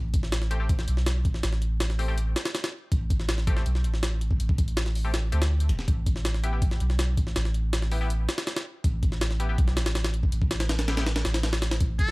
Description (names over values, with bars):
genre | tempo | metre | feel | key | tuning
drum and bass, jungle | 162 BPM | 4/4 | straight | unclear | A4 = 441 Hz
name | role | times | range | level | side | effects
soft dub sub bass | bass | 0.0-12.1 s | E1 to D2 | -26 LUFS | equal | none
jungle sampler-style drum kit | drums | 0.1-12.1 s | hi-hat, kick drum, snare drum | -26 LUFS | equal | studio reverb
band-passed chord stab | stabs | 0.5-11.0 s | A3 to G4 | -38 LUFS | left 3 dB | chorus, dub echo
trumpet with metal mute | melody | 12.0-12.1 s | A4 | -26 LUFS | equal | none
room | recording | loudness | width
digital ambience | vinyl crackle | -24 LUFS | side -24 dB against mid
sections
0.0-12.1 A section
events
none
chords
0.0 Am7; 5.9 Em/A